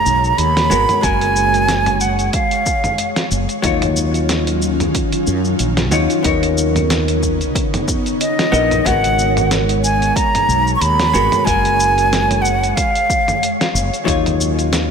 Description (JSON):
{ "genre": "sunset chillout", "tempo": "92 BPM", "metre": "4/4", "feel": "swing 55% on 16ths", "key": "G# dorian", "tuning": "A4 = 441 Hz", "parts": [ { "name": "jazz flute", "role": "melody", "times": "0.0-3.3, 8.2-13.7 s", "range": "D#5 to C#6", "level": "-17 LUFS", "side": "right 2 dB", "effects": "analog delay" }, { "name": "vintage hollow-body jazz guitar", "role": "accompaniment", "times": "0.0-14.9 s", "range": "F#3 to D#5", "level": "-20 LUFS", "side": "moving between left 7 dB and right 5 dB", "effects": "auto-pan, analog delay" }, { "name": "ethereal airy pad", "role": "sustained chords", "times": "0.0-14.9 s", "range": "B2 to C#5", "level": "-23 LUFS", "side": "equal", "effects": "ensemble chorus, built-in reverb" }, { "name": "mellow fretless electric bass", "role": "bass", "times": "0.1-14.9 s", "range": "F#1 to F#2", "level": "-19 LUFS", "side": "equal", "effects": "none" }, { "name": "dusty soul sampler-style drum kit", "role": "drums", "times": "0.1-14.9 s", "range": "hi-hat, shaker, snare drum, toms", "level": "-22 LUFS", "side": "equal", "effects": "overdrive, tape echo" }, { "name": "electronic kick drum", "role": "drums", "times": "1.0-14.2 s", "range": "none", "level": "-22 LUFS", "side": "equal", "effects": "overdrive" } ], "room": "moderate echo chamber reverb, RT60 2.5 s", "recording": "echo-heavy mix", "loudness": "-13 LUFS", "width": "side -6 dB against mid", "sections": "0.0-14.9 A section", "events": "none", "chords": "0.0 G#m9; 1.0 F#maj9; 3.6 D#m9; 6.2 Bmaj9/D#; 8.9 G#m9; 11.5 F#maj9; 14.1 D#m9", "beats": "0.38 | 1.03 1.68 2.34 2.99 | 3.64 4.29 4.94 5.60 | 6.25 6.90 7.55 8.21 | 8.86 9.51 10.16 10.81 | 11.47 12.12 12.77 13.42 | 14.07 14.73" }